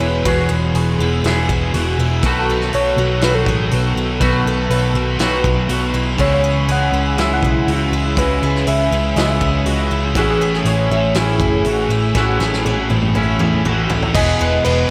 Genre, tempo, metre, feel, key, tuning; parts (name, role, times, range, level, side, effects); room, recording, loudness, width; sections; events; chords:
rock, shoegaze and dream pop; 121 BPM; 4/4; straight; E major; A4 = 442 Hz
soft struck synth lead; melody; 0.0-14.9 s; G#4 to F#5; -24 LUFS; equal; chorus, phaser, diffuse ambient delay
picked twelve-string acoustic guitar; arpeggios; 0.0-14.9 s; E4 to D#5; -28 LUFS; equal; ensemble chorus, diffuse ambient delay
thick fuzz guitar; riff; 0.0-14.9 s; E2 to C#4; -22 LUFS; equal; distortion, ensemble chorus
twangy electric guitar; riff; 0.0-14.9 s; E2 to G#4; -26 LUFS; equal; reverse reverb
vintage muted picked electric bass; bass; 0.0-14.8 s; E1 to C#2; -22 LUFS; equal
loose indie drum kit; drums; 0.3-14.8 s; crash cymbal, hi-hat, kick drum, snare drum, toms; -25 LUFS; equal
moderate plate reverb, RT60 2.2 s; dreamy mix soaked in reverb; -17 LUFS; mono
0.0-14.2 A section
drum fill 12.2-14.2
0.0 E; 2.2 B7; 6.2 C#m7; 10.2 Amaj7; 14.2 Emaj7